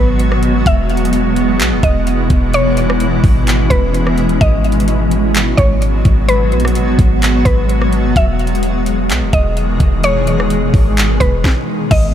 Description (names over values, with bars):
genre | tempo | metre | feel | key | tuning
hip hop, atmospheric cloud-rap | 128 BPM | 4/4 | half-time | unclear | A4 = 440 Hz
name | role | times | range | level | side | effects
mallet-like synth pluck | melody | 0.0-12.1 s | B4 to E5 | -20 LUFS | left 1 dB | chorus, digital delay
granular cloud pad | sustained chords | 0.0-12.1 s | B2 to G#4 | -16 LUFS | equal | built-in reverb, sidechain pumping
clean 808-style bass | bass | 0.0-12.1 s | E1 to B1 | -15 LUFS | equal | none
trap drum kit | drums | 0.2-12.0 s | crash cymbal, handclaps, hi-hat, kick drum, rim click, snare drum | -16 LUFS | equal | none
room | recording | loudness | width
light reverb, digital ambience | none | -11 LUFS | side -10 dB against mid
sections
0.0-11.9 A section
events
stop 11.4-11.9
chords
0.0 G#m7; 0.7 E; 4.4 G#m7; 8.2 Emaj7